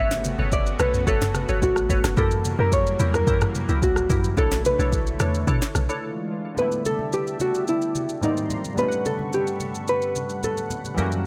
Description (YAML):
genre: amapiano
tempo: 109 BPM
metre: 4/4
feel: straight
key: unclear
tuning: A4 = 440 Hz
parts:
  - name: hollow-body jazz guitar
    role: melody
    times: 0.0-10.8 s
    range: D#4 to E5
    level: -27 LUFS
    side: equal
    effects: delay
  - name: lush unison pad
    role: sustained chords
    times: 0.0-11.3 s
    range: C#3 to E6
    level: -35 LUFS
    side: equal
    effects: chorus, sidechain pumping
  - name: glassy wavetable pluck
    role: stabs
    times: 0.0-6.0, 11.0-11.1 s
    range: D4 to C#5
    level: -33 LUFS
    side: equal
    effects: chorus, delay
  - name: deep log drum bass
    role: bass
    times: 0.0-5.9 s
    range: F#1 to B2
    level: -27 LUFS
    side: equal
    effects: none
  - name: afro-pop drum kit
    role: drums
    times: 0.1-11.2 s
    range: kick drum, rim click, shaker, snare drum, toms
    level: -28 LUFS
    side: equal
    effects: none
  - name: congas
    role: percussion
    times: 0.3-11.1 s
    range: none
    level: -37 LUFS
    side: equal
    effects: none
  - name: warm analog keys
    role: accompaniment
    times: 6.5-11.3 s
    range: G2 to F#5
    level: -33 LUFS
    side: equal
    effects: chorus
  - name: vintage muted fingered electric bass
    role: bass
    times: 11.0-11.3 s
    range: F#2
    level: -27 LUFS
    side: equal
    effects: none
room: light reverb, digital ambience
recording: none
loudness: -23 LUFS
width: mono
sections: 0.0-6.6 A section; 6.6-11.3 B section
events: drop 0.0-6.6; break 6.0-6.6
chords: 0.0 Gmaj9#11; 2.2 F#7b9; 4.4 Bm11; 6.0 E7b9; 6.6 A7sus4; 8.2 G#maj9#11; 8.8 Gmaj9#11